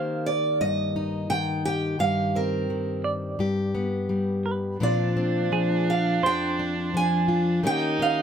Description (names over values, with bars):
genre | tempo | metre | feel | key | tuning
acoustic folk-pop ballad | 86 BPM | 4/4 | straight | C minor | A4 = 440 Hz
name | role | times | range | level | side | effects
picked old ladder-braced acoustic guitar | melody | 0.0-8.2 s | Bb4 to Ab5 | -26 LUFS | right 4 dB | none
fingerpicked plugged-in steel-string acoustic guitar | accompaniment | 0.0-8.2 s | F2 to G4 | -25 LUFS | left 2 dB | none
semi-hollow electric guitar | arpeggios | 0.0-7.9 s | Ab4 to F5 | -30 LUFS | right 4 dB | tremolo
warm viola | second line | 4.8-8.2 s | D4 to Eb4 | -29 LUFS | right 4 dB | none
room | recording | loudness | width
light reverb | close, detailed microphones | -22 LUFS | side -8 dB against mid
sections
0.0-8.2 A section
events
none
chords
0.0 Cm7 (rootless); 2.0 Cm/G; 3.4 G; 4.8 Bbadd9; 7.6 Eb7